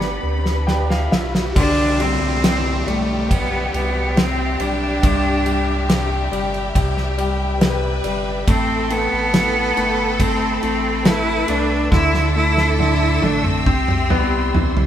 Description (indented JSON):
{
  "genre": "pop ballad",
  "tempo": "70 BPM",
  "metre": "4/4",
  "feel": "straight",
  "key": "C major",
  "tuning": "A4 = 440 Hz",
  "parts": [
    { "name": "bright cello", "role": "melody", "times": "0.0-14.9 s", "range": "A3 to E4", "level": "-21 LUFS", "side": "equal", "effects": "none" },
    { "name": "clear baby grand piano", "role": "accompaniment", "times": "0.0-14.9 s", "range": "G2 to G5", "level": "-24 LUFS", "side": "left 3 dB", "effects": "none" },
    { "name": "warm symphonic string section", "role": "sustained chords", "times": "0.0-14.9 s", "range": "G4 to E6", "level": "-28 LUFS", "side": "left 2 dB", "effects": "none" },
    { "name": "nylon-string guitar", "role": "arpeggios", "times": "0.0-2.2, 8.5-14.9 s", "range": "A2 to B4", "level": "-30 LUFS", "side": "right 5 dB", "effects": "none" },
    { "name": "warm sub bass", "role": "bass", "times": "0.0-14.9 s", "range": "G1 to D2", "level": "-23 LUFS", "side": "equal", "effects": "none" },
    { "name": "loose indie drum kit", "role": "drums", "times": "0.0-14.9 s", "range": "crash cymbal, kick drum, ride cymbal, snare drum, toms", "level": "-20 LUFS", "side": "equal", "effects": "none" },
    { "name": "riser and downlifter", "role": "sound effects", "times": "0.0-8.5 s", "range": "none", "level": "-31 LUFS", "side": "equal", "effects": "none" },
    { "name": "warm studio violin section", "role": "second line", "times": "1.6-14.9 s", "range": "E4 to B4", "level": "-27 LUFS", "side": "equal", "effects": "none" }
  ],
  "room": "moderate stone room reverb, RT60 1.0 s",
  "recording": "band playing live in one room",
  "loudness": "-16 LUFS",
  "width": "side -10 dB against mid",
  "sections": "0.0-1.6 A section; 1.6-14.9 B section",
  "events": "drum fill 0.0-1.6, 11.9-14.9; riser 0.0-1.6; grand piano fill 0.2-1.6",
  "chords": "0.0 G; 1.6 Cadd9; 8.5 Amadd9; 11.9 Dsus2; 13.7 C"
}